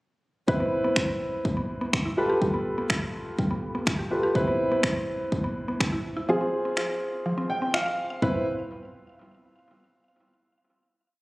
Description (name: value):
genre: dance-pop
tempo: 124 BPM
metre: 4/4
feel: straight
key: C major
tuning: A4 = 440 Hz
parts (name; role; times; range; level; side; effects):
- warm baby grand piano; accompaniment; 0.5-8.4 s; C4 to G5; -27 LUFS; equal; sidechain pumping
- mallet-like synth pluck; arpeggios; 0.5-8.4 s; C3 to F5; -32 LUFS; equal; chorus, sidechain pumping, tape echo
- pop drum kit; drums; 0.5-8.3 s; finger snaps, kick drum, toms; -28 LUFS; equal; none
room: light reverb, digital ambience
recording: recorded on a phone in the room, club reverb, compression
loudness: -24 LUFS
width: side -21 dB against mid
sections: 0.5-8.2 verse; 8.2-10.2 final chord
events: kick muted 6.3-8.2; grand piano fill 7.3-8.2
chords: 0.5 Cmaj7; 2.2 G9; 4.4 Cmaj7; 6.3 Fm; 8.2 Cmaj7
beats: | 0.48 0.97 1.45 1.93 | 2.42 2.90 3.38 3.87 | 4.35 4.84 5.32 5.80 | 6.29 6.77 7.26 7.74 | 8.22